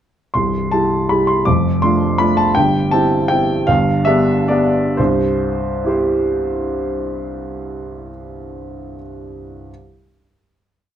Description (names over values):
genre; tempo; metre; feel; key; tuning
classical, piano waltz; 116-176 BPM; 3/4; rubato; C major; A4 = 440 Hz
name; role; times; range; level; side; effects
warm grand piano; solo; 0.3-9.7 s; C1 to D6; -15 LUFS; equal; none
room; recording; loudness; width
little or no reverb; close, detailed microphones; -14 LUFS; side -9 dB against mid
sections
0.3-5.0 A section; 5.0-7.6 final chord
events
slowing down 2.0-5.0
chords
0.3 C; 1.5 Dm/F; 2.6 C/G; 3.7 G7; 5.0 C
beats
| 0.35 0.72 1.10 | 1.47 1.82 2.20 | 2.56 2.91 3.29 | 3.67 4.06 4.50 | 4.98 5.40 5.84 | 6.28 6.72 7.16